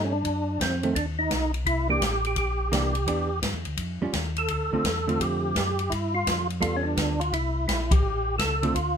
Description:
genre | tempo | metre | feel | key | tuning
soul jazz organ trio | 169 BPM | 4/4 | swing 65% on 8ths | unclear | A4 = 443 Hz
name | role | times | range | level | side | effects
percussive tonewheel organ | melody | 0.0-9.0 s | C4 to A4 | -27 LUFS | right 1 dB | slow rotary speaker, overdrive, chorus vibrato
hollow-body jazz guitar | accompaniment | 0.0-8.7 s | D3 to A4 | -28 LUFS | right 3 dB | none
mellow tonewheel organ | bass | 0.0-9.0 s | A1 to G2 | -29 LUFS | left 1 dB | slow rotary speaker
swinging big-band drum kit | drums | 0.2-8.9 s | hi-hat, kick drum, ride cymbal, snare drum | -28 LUFS | left 1 dB | none
room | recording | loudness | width
light reverb | minimal, uncompressed stereo recording | -23 LUFS | side -7 dB against mid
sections
0.0-9.0 A section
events
band accent 7.9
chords
0.2 F#dim7(no3); 1.7 C9; 3.1 Em7; 3.8 Eb9; 4.5 Dm7; 5.9 G9; 7.3 C7; 8.0 A7

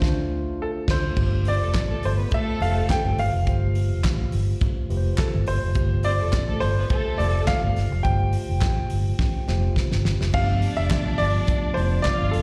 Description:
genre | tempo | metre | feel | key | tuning
disco | 105 BPM | 4/4 | straight | unclear | A4 = 440 Hz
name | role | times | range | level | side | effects
mellow tine electric piano | accompaniment | 0.0-12.4 s | F3 to C5 | -34 LUFS | equal | none
fingered electric bass | bass | 0.0-12.4 s | F1 to D2 | -25 LUFS | equal | none
damped 70s drum kit | drums | 0.0-12.4 s | crash cymbal, handclaps, hi-hat, kick drum, snare drum | -28 LUFS | equal | none
clear baby grand piano | melody | 0.6-12.4 s | A4 to G5 | -30 LUFS | equal | slapback echo
congas | percussion | 1.2-12.3 s | none | -35 LUFS | equal | none
warm studio string section | second line | 1.5-12.4 s | A3 to F5 | -34 LUFS | equal | slapback echo
room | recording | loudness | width
small room ambience | live gig heard through the venue's PA, recital hall reverb | -23 LUFS | mono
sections
0.0-1.2 A section; 1.2-10.3 B section; 10.3-12.4 C section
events
band accent 0.0-1.2; drum fill 9.2-10.3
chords
0.0 Dm7; 1.2 G9sus4; 10.3 G9

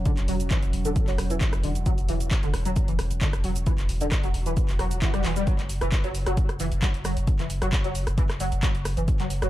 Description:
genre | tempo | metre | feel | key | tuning
driving peak-time techno | 133 BPM | 4/4 | straight | unclear | A4 = 441 Hz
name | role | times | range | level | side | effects
saturated sub bass | bass | 0.0-9.5 s | E1 to F#1 | -28 LUFS | equal | sidechain pumping, low-pass filter
analog drone | drone | 0.0-5.5 s | F#3 to C#4 | -37 LUFS | right 2 dB | chorus, sidechain pumping
overdriven synth lead | riff | 0.1-9.5 s | D3 to G3 | -31 LUFS | equal | ensemble chorus, sidechain pumping, ping-pong delay
electronic kick drum | drums | 0.1-9.2 s | none | -24 LUFS | equal | none
punchy analog drum machine | drums | 0.1-9.5 s | handclaps, hi-hat, rim click, shaker | -33 LUFS | equal | sidechain pumping on hats, sidechain pumping on perc
swell | sound effects | 4.7-5.5 s | none | -38 LUFS | equal | none
room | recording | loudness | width
light reverb | dark, warm production | -22 LUFS | side -14 dB against mid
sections
0.0-5.5 A section; 5.5-9.5 B section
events
swell 4.7-5.5; drum fill 5.2; drop 5.5-9.5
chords
none

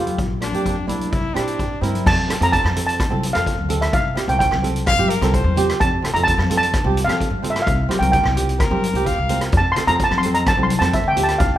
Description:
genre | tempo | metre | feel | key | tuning
calypso | 128 BPM | 4/4 | straight | F major | A4 = 439 Hz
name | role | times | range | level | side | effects
steel pan | melody | 0.0-11.5 s | F4 to C6 | -20 LUFS | right 1 dB | none
flamenco guitar | accompaniment | 0.0-11.4 s | A3 to C5 | -25 LUFS | right 4 dB | none
upright bass | bass | 0.0-11.6 s | Bb1 to Bb2 | -22 LUFS | equal | none
street-band drum kit | drums | 0.1-11.5 s | crash cymbal, hi-hat, kick drum, rim click | -23 LUFS | equal | none
congas | percussion | 0.1-11.3 s | none | -28 LUFS | left 4 dB | none
clear trumpet | second line | 0.4-2.1, 4.9-5.7, 8.6-9.4 s | D4 to F5 | -24 LUFS | left 2 dB | none
room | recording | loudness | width
light reverb | minimal, uncompressed stereo recording | -16 LUFS | side -12 dB against mid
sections
0.0-2.1 A section; 2.1-11.6 B section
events
none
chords
0.2 Bb; 1.1 C; 2.1 F; 3.9 Csus4; 5.8 F; 7.7 C7sus4; 9.5 F

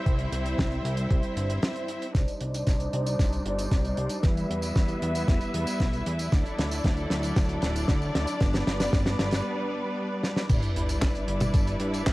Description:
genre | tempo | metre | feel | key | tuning
italo disco | 115 BPM | 4/4 | straight | G major | A4 = 440 Hz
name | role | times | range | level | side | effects
clear symphonic string section | sustained chords | 0.0-12.1 s | F#3 to E5 | -30 LUFS | equal | low-pass filter
fat analog bass | bass | 0.1-12.1 s | D1 to G2 | -31 LUFS | equal | none
damped 70s drum kit | drums | 0.1-12.1 s | crash cymbal, handclaps, hi-hat, snare drum, tambourine, toms | -31 LUFS | equal | studio reverb
electronic kick drum | drums | 0.1-12.1 s | none | -25 LUFS | equal | studio reverb
sub drop | sound effects | 10.5-12.1 s | none | -32 LUFS | equal | none
room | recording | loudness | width
studio ambience | dry, gritty hardware recording, cassette tape | -24 LUFS | side -19 dB against mid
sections
0.0-2.1 A section; 2.1-10.5 B section; 10.5-12.1 C section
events
break 1.6-2.1, 9.5-10.5; drum fill 2.1-9.5, 10.2; filter sweep on string section 2.1-10.5; impact 10.5-12.1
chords
0.0 C; 2.1 Cmadd9; 4.2 Em; 6.3 Dadd9; 8.4 G; 10.5 G6

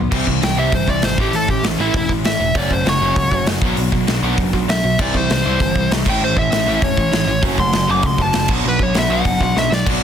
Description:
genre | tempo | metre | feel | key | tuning
punk rock | 197 BPM | 4/4 | straight | unclear | A4 = 435 Hz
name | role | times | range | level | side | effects
sludgy distorted guitar | riff | 0.0-10.0 s | F#2 to C4 | -24 LUFS | left 10 dB | overdrive
growling picked electric bass | bass | 0.0-10.0 s | E1 to C#2 | -22 LUFS | equal | overdrive
biting overdriven guitar | riff | 0.1-10.0 s | A2 to F#4 | -24 LUFS | equal | none
overdriven electric guitar | riff | 0.1-10.0 s | A2 to D4 | -24 LUFS | right 13 dB | none
big rock drum kit | drums | 0.1-9.9 s | crash cymbal, hi-hat, kick drum, snare drum | -20 LUFS | equal | soft clipping on kick
dark smooth lead guitar | melody | 0.4-9.9 s | E4 to D6 | -20 LUFS | equal | overdrive, ping-pong delay
room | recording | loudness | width
light reverb | dense, heavily limited modern master | -14 LUFS | side -8 dB against mid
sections
0.1-9.9 A section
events
lead electric guitar solo 0.1-9.9; drum fill 9.6-9.9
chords
0.1 C; 1.2 A; 2.6 F#m; 3.6 Bm; 5.0 C; 6.1 A; 7.4 F#m; 8.5 Bm

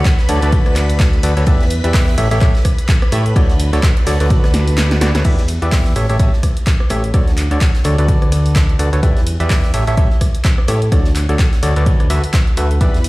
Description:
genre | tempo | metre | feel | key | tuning
piano house | 127 BPM | 4/4 | swing 58% on 16ths | D major | A4 = 440 Hz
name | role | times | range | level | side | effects
breathy hollow jazz flute | melody | 0.0-0.5 s | A5 | -27 LUFS | right 1 dB | digital delay
string machine, violins | sustained chords | 0.0-5.3, 12.8-13.1 s | B4 to B5 | -28 LUFS | left 1 dB | ensemble chorus, sidechain pumping
percussive organ stab | riff | 0.0-13.0 s | D3 to E5 | -21 LUFS | equal | chorus, sidechain pumping, digital delay
plucky analog bass | bass | 0.0-13.1 s | A1 to A2 | -16 LUFS | equal | sidechain pumping
electronic kick drum | drums | 0.1-12.9 s | none | -14 LUFS | equal | overdrive
punchy analog drum machine | drums | 0.1-13.1 s | crash cymbal, handclaps, hi-hat, rim click, snare drum | -23 LUFS | equal | overdrive
unplugged drum kit | drums | 0.1-13.1 s | hi-hat, ride cymbal, snare drum | -33 LUFS | left 1 dB | high-pass filter on cymbals, high-pass filter on hats, high-pass filter on snare, high-pass filter on room
room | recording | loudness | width
little or no reverb | played on a big sound system in a bare room, stone room reverb | -12 LUFS | side -20 dB against mid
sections
0.0-5.2 A section; 5.2-13.1 B section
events
drop 0.0-5.2; drum fill 4.5-5.2; kick drops out 4.8-5.2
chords
0.0 Dmaj7; 1.5 Em7; 2.2 A7; 3.4 Dmaj7; 5.2 Em7; 6.0 A7; 7.1 Dmaj7; 9.0 Em7; 9.7 A7; 10.9 Dmaj7; 11.9 Bm7/D

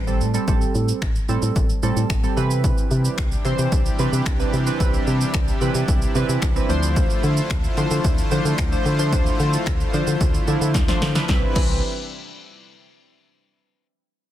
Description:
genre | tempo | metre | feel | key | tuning
dance-pop | 111 BPM | 4/4 | straight | C major | A4 = 440 Hz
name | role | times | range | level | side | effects
organ-like FM bass | bass | 0.0-11.8 s | A1 to D3 | -22 LUFS | equal | sidechain pumping
chorused retro synth keys | accompaniment | 0.1-11.8 s | E3 to C5 | -25 LUFS | right 2 dB | sidechain pumping
punchy analog drum machine | drums | 0.1-11.7 s | crash cymbal, finger snaps, kick drum, shaker, snare drum | -22 LUFS | equal | soft clipping on snare
supersaw pad | sustained chords | 2.6-11.5 s | C3 to C5 | -28 LUFS | equal | sidechain pumping
group handclap | percussion | 3.2-11.8 s | none | -39 LUFS | left 7 dB | none
room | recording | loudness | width
little or no reverb | dense, heavily limited modern master | -18 LUFS | side -12 dB against mid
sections
0.0-11.3 A section; 11.3-13.5 B section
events
drum fill 10.7-11.3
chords
0.0 Am7; 2.4 Cmaj7; 6.7 Dm7; 11.3 Cmaj7

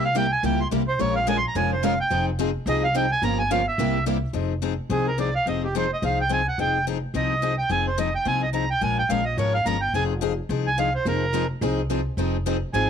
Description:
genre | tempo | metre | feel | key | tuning
acoustic string swing (jazz manouche) | 215 BPM | 4/4 | swing 56% on 8ths | F minor | A4 = 442 Hz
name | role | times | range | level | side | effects
accordion | melody | 0.0-12.9 s | G4 to C6 | -24 LUFS | right 3 dB | none
picked steel-string acoustic guitar | accompaniment | 0.0-12.9 s | C3 to Bb4 | -27 LUFS | left 12 dB | none
picked steel-string acoustic guitar | accompaniment | 0.0-4.2, 11.1-12.9 s | C3 to Bb4 | -29 LUFS | right 14 dB | none
upright bass | bass | 0.0-12.9 s | F1 to Db2 | -27 LUFS | equal | none
room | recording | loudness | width
light reverb | 1960s-style stereo with parts hard left and right | -21 LUFS | side -7 dB against mid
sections
0.0-4.3 A section; 4.3-12.9 A section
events
accordion solo 0.0-4.3, 4.3-12.9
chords
0.0 C7b9; 1.0 Bbm7; 2.1 Fm7; 3.2 Gm7b5; 3.8 C7; 4.3 Fm9; 8.8 Bbm7; 9.9 Fm7

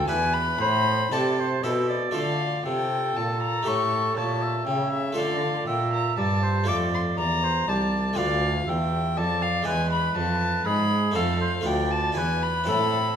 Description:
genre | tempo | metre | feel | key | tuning
classical, baroque-style sonata movement with continuo | 119 BPM | 3/4 | straight | D minor | A4 = 441 Hz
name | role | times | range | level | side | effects
warm violin | melody | 0.0-13.2 s | E5 to D6 | -27 LUFS | left 5 dB | none
warm oboe | second line | 0.0-13.1 s | G#4 to E5 | -28 LUFS | right 5 dB | none
harpsichord | accompaniment | 0.0-13.2 s | C2 to B4 | -29 LUFS | equal | none
warm cello | bass | 0.0-13.2 s | C2 to D3 | -28 LUFS | right 2 dB | none
room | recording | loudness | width
wet recital hall reverb, RT60 1.4 s | none | -22 LUFS | side -8 dB against mid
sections
0.0-2.2 A section; 2.2-13.2 A section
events
none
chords
0.1 E7; 0.6 Am; 2.2 Dm; 3.7 A7; 5.2 Dm; 8.2 Bm7b5/D; 9.7 E; 11.2 F; 11.7 Bm7b5/D; 12.2 E7

